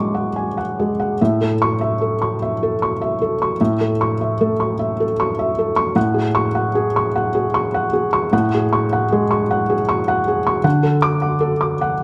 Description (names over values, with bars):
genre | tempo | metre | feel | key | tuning
neoclassical minimalist piano | 51 BPM (dotted quarters) | 6/8 | rubato | unclear | A4 = 439 Hz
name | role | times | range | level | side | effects
felt-muted upright piano | solo | 0.0-12.0 s | A2 to D6 | -19 LUFS | equal | none
room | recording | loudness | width
moderate recital hall reverb, RT60 1.4 s | close, detailed microphones | -19 LUFS | mono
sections
0.0-1.2 A section; 1.2-12.0 B section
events
none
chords
0.0 F#madd9/A; 1.2 A; 6.0 F#madd9/A; 10.6 D